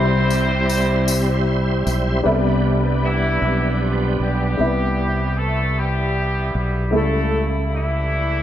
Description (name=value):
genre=slow gospel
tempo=51 BPM (dotted quarters)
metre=6/8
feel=straight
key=C major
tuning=A4 = 440 Hz
part: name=clear horn section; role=melody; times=0.0-8.4 s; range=E3 to C5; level=-24 LUFS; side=equal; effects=none
part: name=warm upright piano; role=accompaniment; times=0.0-8.4 s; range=C3 to B5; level=-23 LUFS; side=left 2 dB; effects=ensemble chorus
part: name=bright tonewheel organ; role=sustained chords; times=0.0-4.6 s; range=G3 to C5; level=-23 LUFS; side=right 2 dB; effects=fast rotary speaker, overdrive, chorus vibrato
part: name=fingered electric bass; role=bass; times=0.0-8.4 s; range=B1 to C#2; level=-21 LUFS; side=equal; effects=none
part: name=tambourine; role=percussion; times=0.3-2.2 s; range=none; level=-28 LUFS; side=left 7 dB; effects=none
room=moderate plate reverb, RT60 2.9 s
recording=dreamy mix soaked in reverb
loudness=-17 LUFS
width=side -11 dB against mid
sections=0.0-2.3 A section; 2.3-4.6 B section; 4.6-8.4 C section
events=tonewheel organ solo 2.3-4.6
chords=0.0 Cmaj7; 6.9 A7/C#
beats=1.08 | 2.25 3.42 | 4.59 5.77 | 6.94 8.11